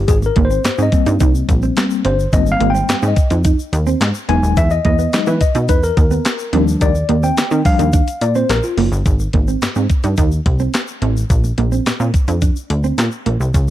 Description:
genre	early-eighties boogie funk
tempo	107 BPM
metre	4/4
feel	straight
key	Ab lydian, Ab major from 9.1 s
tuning	A4 = 440 Hz
part	mellow tine electric piano	accompaniment	0.0-8.9 s	F3 to G#5	-18 LUFS	left 4 dB	medium stereo tremolo
part	plucky analog bass	bass	0.0-13.7 s	D#1 to E3	-17 LUFS	equal	none
part	crisp 8-bit digital drum machine	drums	0.1-13.7 s	handclaps, hi-hat, kick drum, snare drum	-16 LUFS	equal	none
part	tube shaker	percussion	0.1-13.7 s	none	-35 LUFS	left 8 dB	none
part	mellow electric guitar	riff	0.2-13.4 s	Bb3 to Eb4	-21 LUFS	right 8 dB	lush chorus
room	little or no reverb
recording	dark, warm production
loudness	-13 LUFS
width	side -13 dB against mid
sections	0.0-9.1 A section; 9.1-13.7 B section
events	tine electric piano solo 0.0-9.1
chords	0.1 Abmaj9; 4.3 Emaj9; 6.5 Ebmaj9; 9.1 Ab; 11.3 Bbadd9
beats	| 0.09 0.65 1.21 1.77 | 2.33 2.89 3.45 4.01 | 4.57 5.13 5.69 6.25 | 6.82 7.38 7.94 8.50 | 9.06 9.62 10.18 10.74 | 11.30 11.86 12.42 12.98 | 13.54

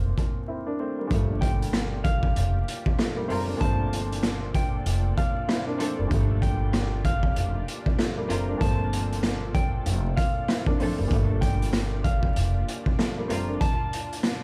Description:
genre	hip hop, boom-bap hip-hop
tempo	96 BPM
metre	4/4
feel	swing 60% on 16ths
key	G minor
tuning	A4 = 438 Hz
part	warm upright piano	accompaniment	0.0-13.6 s	Bb2 to E4	-34 LUFS	equal	cassette tape, high-pass filter, low-pass filter
part	upright bass	bass	0.0-13.5 s	F1 to G1	-30 LUFS	equal	none
part	raw garage drum kit	drums	0.2-14.4 s	hi-hat, kick drum, rim click, snare drum	-29 LUFS	equal	none
part	lush unison pad	sustained chords	1.1-14.4 s	Bb2 to D5	-43 LUFS	equal	chorus, high-pass filter, low-pass filter
part	electric guitar at the edge of break-up	melody	1.4-14.4 s	F5 to A5	-37 LUFS	equal	spring reverb, high-pass filter, low-pass filter
part	muted studio string section	stabs	3.3-13.6 s	F3 to Bb4	-38 LUFS	equal	high-pass filter, low-pass filter, tape echo
room	little or no reverb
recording	dark, warm production, vinyl crackle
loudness	-26 LUFS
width	mono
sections	0.0-1.1 A section; 1.1-14.4 B section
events	break 0.5-1.1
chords	0.0 Bbmaj7; 1.1 Gm7; 3.6 Bbmaj7/G; 6.1 Gm7; 8.6 Bbmaj7/G; 11.1 Gm7; 13.6 Bbmaj7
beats	0.48 | 1.11 1.73 2.36 2.98 | 3.61 4.23 4.86 5.48 | 6.11 6.73 7.36 7.98 | 8.61 9.23 9.86 10.48 | 11.11 11.73 12.36 12.98 | 13.61 14.23

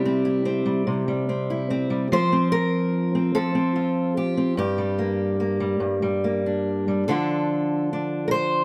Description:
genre	folk, solo fingerstyle acoustic guitar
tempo	48 BPM (dotted quarters)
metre	6/8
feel	rubato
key	G dorian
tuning	A4 = 439 Hz
part	fingerpicked steel-string acoustic guitar	solo	0.0-8.6 s	G2 to C5	-23 LUFS	equal	none
room	wet studio reverb, RT60 0.7 s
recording	none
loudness	-24 LUFS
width	mono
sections	0.0-7.1 A section; 7.1-8.6 B section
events	none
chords	0.0 C; 2.1 F; 4.6 Gm; 7.1 Dm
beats	0.89 | 2.13 3.36 | 4.58 5.81 | 7.07 8.33

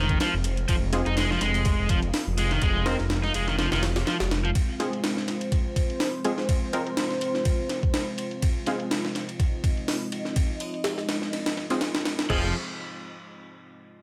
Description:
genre	breakbeat, breaks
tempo	124 BPM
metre	4/4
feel	swing 55% on 16ths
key	F minor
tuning	A4 = 439 Hz
part	deep dark ambient pad	sustained chords	0.0-12.5 s	Ab3 to F5	-35 LUFS	equal	chorus, built-in reverb, sidechain pumping
part	crunchy overdriven guitar	riff	0.0-4.5, 12.3-12.5 s	Eb3 to Eb4	-31 LUFS	equal	dub echo
part	detuned saw bass	bass	0.0-4.5, 12.3-12.5 s	F1	-29 LUFS	equal	none
part	breakbeat sampler-style drum kit	drums	0.1-12.4 s	crash cymbal, hi-hat, kick drum, ride cymbal, snare drum	-30 LUFS	equal	none
part	electronic hi-hat	drums	0.1-12.3 s	none	-42 LUFS	equal	low-pass filter on hats, low-pass filter on snare
part	orchestra-hit-like synth stab	stabs	0.9-12.5 s	Ab3 to Bb4	-34 LUFS	equal	built-in reverb, cassette tape, dub echo
room	little or no reverb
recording	none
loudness	-26 LUFS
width	mono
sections	0.0-12.3 A section; 12.3-14.0 B section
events	none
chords	0.0 Fm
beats	0.20 | 0.68 1.17 1.65 2.13 | 2.62 3.10 3.59 4.07 | 4.55 5.04 5.52 6.01 | 6.49 6.97 7.46 7.94 | 8.43 8.91 9.39 9.88 | 10.36 10.85 11.33 11.81 | 12.30

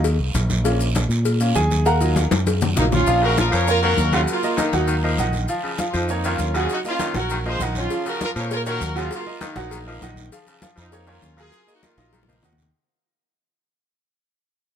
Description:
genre	latin, salsa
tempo	199 BPM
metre	4/4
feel	straight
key	Bb minor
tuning	A4 = 440 Hz
part	bright upright piano	accompaniment	0.0-12.7 s	Eb3 to Bb5	-25 LUFS	right 1 dB	none
part	fingered electric bass	bass	0.0-12.7 s	Bb1 to Bb2	-22 LUFS	equal	none
part	congas	percussion	0.0-12.6 s	none	-28 LUFS	left 2 dB	none
part	cowbell and bongos	percussion	0.0-3.0, 7.9-12.7 s	none	-28 LUFS	left 8 dB	none
part	maracas	percussion	0.0-12.7 s	none	-36 LUFS	left 5 dB	none
part	guiro	percussion	0.1-12.7 s	none	-35 LUFS	right 6 dB	none
part	warm horn section	melody	2.8-12.6 s	Bb3 to Db5	-24 LUFS	right 1 dB	none
part	raspy baritone saxophone	second line	3.2-12.5 s	Db3 to F3	-29 LUFS	left 3 dB	none
room	light reverb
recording	none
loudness	-18 LUFS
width	side -9 dB against mid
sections	0.0-3.1 A section; 3.1-12.7 B section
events	upright piano solo 0.0-3.1; drum fill 2.3-3.1, 12.1-12.7; fade-out 3.1-12.7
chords	0.0 Eb5; 0.7 Bbm; 6.7 Ebmadd9; 7.9 Bbm; 9.1 Ebmadd9; 10.3 Bbm; 11.5 Ebmadd9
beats	0.05 0.35 | 0.65 0.96 1.26 1.56 | 1.86 2.17 2.47 2.77 | 3.07 3.38 3.68 3.98 | 4.28 4.59 4.89 5.19 | 5.49 5.79 6.10 6.40 | 6.70 7.00 7.30 7.61 | 7.91 8.21 8.51 8.81 | 9.12 9.42 9.72 10.02 | 10.32 10.62 10.92 11.22 | 11.53 11.83 12.13 12.43

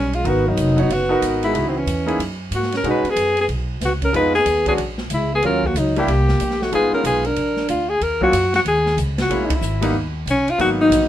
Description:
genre	jazz, small-group swing and bop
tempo	186 BPM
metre	4/4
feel	swing 63% on 8ths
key	Eb minor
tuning	A4 = 440 Hz
part	breathy alto saxophone	melody	0.0-11.1 s	C4 to B4	-19 LUFS	left 1 dB	none
part	breathy trombone	second line	0.0-7.9 s	Eb3 to Eb4	-25 LUFS	right 4 dB	none
part	upright bass	bass	0.0-11.1 s	F1 to B2	-23 LUFS	equal	none
part	open jazz drum kit	drums	0.1-11.0 s	hi-hat, kick drum, ride cymbal, snare drum	-29 LUFS	right 1 dB	none
part	clear grand piano	accompaniment	0.2-11.1 s	Gb3 to Db5	-22 LUFS	equal	none
room	moderate studio reverb, RT60 0.6 s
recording	minimal, uncompressed stereo recording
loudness	-16 LUFS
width	side -12 dB against mid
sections	0.0-8.0 A section; 8.0-11.1 A section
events	band accent 9.5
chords	0.3 Abm7; 1.5 Dbm11; 2.2 Gbsus2; 2.8 B69; 4.1 Fm7b5; 4.8 Bbm7b5; 5.4 Ebm7; 6.1 C5; 6.7 Fm7b5; 7.4 Bb; 8.0 Ebm7; 9.3 Bbm7b5; 10.0 Badd9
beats	| 0.25 0.58 0.90 1.22 | 1.55 1.87 2.19 2.52 | 2.84 3.17 3.49 3.81 | 4.13 4.46 4.78 5.11 | 5.43 5.75 6.08 6.40 | 6.72 7.04 7.37 7.69 | 8.02 8.34 8.66 8.98 | 9.31 9.63 9.95 10.28 | 10.60 10.92

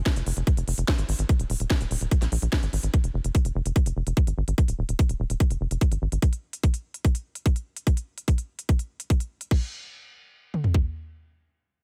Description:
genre	psychedelic trance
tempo	146 BPM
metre	4/4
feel	straight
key	F minor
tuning	A4 = 444 Hz
part	drum and bass drum kit	drums	0.1-10.8 s	kick drum, toms	-24 LUFS	equal	none
part	drum and bass drum kit	drums	0.1-9.6 s	crash cymbal, hi-hat, snare drum	-36 LUFS	equal	none
part	tight sequencer bass	bass	0.2-6.2 s	Eb1 to Bb1	-28 LUFS	equal	none
room	digital ambience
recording	none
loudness	-26 LUFS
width	mono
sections	0.0-9.5 A section; 9.5-11.8 B section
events	filter sweep on analog synth bass 0.0-6.2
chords	none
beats	0.06 0.47 0.88 | 1.29 1.70 2.11 2.52 | 2.94 3.35 3.76 4.17 | 4.58 4.99 5.40 5.81 | 6.22 6.63 7.05 7.46 | 7.87 8.28 8.69 9.10 | 9.51 9.92 10.33 10.74

